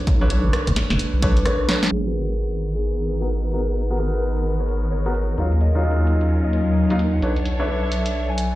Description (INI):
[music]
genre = UK garage, two-step garage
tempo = 130 BPM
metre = 4/4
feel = swing 61% on 16ths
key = G# dorian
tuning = A4 = 440 Hz
[part]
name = warbly tape-like pad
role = texture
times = 0.0-8.6 s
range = F#3 to A5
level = -29 LUFS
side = left 2 dB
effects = chorus, built-in reverb, phaser, sidechain pumping
[part]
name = deep soft wobble bass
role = bass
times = 0.1-8.6 s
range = F#1 to D#2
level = -21 LUFS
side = equal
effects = chorus
[part]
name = electronic kick drum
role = drums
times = 0.1-1.3 s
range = none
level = -21 LUFS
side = equal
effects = none
[part]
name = punchy analog drum machine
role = drums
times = 0.1-8.5 s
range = crash cymbal, hi-hat, rim click, snare drum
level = -25 LUFS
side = equal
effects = none
[part]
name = warm grand piano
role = stabs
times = 0.2-8.6 s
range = F#3 to C#5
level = -27 LUFS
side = equal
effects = low-pass filter
[part]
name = concert harp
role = melody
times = 1.9-8.6 s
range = G#4 to G#5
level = -31 LUFS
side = equal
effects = vintage 12-bit sampler grit, ping-pong delay
[part]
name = dark symphonic violin section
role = sustained chords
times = 1.9-8.6 s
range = B3 to C#5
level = -31 LUFS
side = equal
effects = sidechain pumping, low-pass filter
[sound]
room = light reverb, digital ambience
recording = played on a big sound system in a bare room, large studio reverb, low-pass filter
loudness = -18 LUFS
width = side -16 dB against mid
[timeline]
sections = 0.0-1.9 A section; 1.9-8.6 B section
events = drum fill 1.7; band accent 1.8; filter sweep on grand piano 1.9-8.6; filter sweep on violin section 1.9-8.6; filter sweep 1.9-8.6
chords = 0.0 Bm9; 1.9 G#m9; 5.4 D#m9; 7.2 Bm9